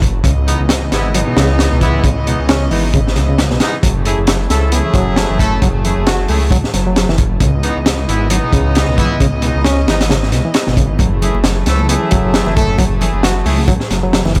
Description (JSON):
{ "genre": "breakbeat, breaks", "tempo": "134 BPM", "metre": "4/4", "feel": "swing 57% on 16ths", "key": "F# dorian", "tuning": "A4 = 438 Hz", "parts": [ { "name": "warm chamber string section", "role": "sustained chords", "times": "0.0-14.4 s", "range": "C#3 to D#5", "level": "-26 LUFS", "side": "equal", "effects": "vintage 12-bit sampler grit, sidechain pumping" }, { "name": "detuned saw bass", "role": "bass", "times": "0.0-14.4 s", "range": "F#1 to C#2", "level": "-19 LUFS", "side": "equal", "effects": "tube saturation" }, { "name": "crunchy breakbeat drum kit", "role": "drums", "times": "0.0-14.4 s", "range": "hi-hat, kick drum, snare drum", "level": "-18 LUFS", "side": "equal", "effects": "none" }, { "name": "barky reed electric piano", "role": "riff", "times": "0.2-14.3 s", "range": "B2 to F#4", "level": "-22 LUFS", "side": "equal", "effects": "overdrive, fast tremolo, vintage 12-bit sampler grit, dub echo" }, { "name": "bright horn section", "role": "stabs", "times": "0.5-13.6 s", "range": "E3 to A4", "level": "-24 LUFS", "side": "equal", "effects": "dub echo" }, { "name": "congas", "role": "percussion", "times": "11.0-14.3 s", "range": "none", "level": "-28 LUFS", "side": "equal", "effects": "none" } ], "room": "small room ambience", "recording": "none", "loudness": "-14 LUFS", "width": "mono", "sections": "0.0-14.4 A section", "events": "none", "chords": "0.2 C#m9; 3.8 F#m9; 7.4 C#m9; 11.0 F#m9" }